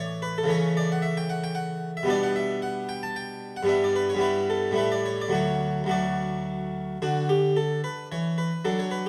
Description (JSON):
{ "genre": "classical, baroque-style suite movement for harpsichord", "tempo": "111 BPM", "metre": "3/4", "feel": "rubato", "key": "D major", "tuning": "A4 = 443 Hz", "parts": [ { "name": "harpsichord", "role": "solo", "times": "0.0-9.1 s", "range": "D2 to A5", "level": "-26 LUFS", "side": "equal", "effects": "none" } ], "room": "moderate recital hall reverb, RT60 1.4 s", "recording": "dark, warm production", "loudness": "-26 LUFS", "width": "mono", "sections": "0.0-7.0 A section; 7.0-9.1 B section", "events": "none", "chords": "0.5 A/C#; 2.1 G/B; 3.7 G; 4.2 Em/G; 4.8 A5; 5.3 D; 7.0 Dmaj13" }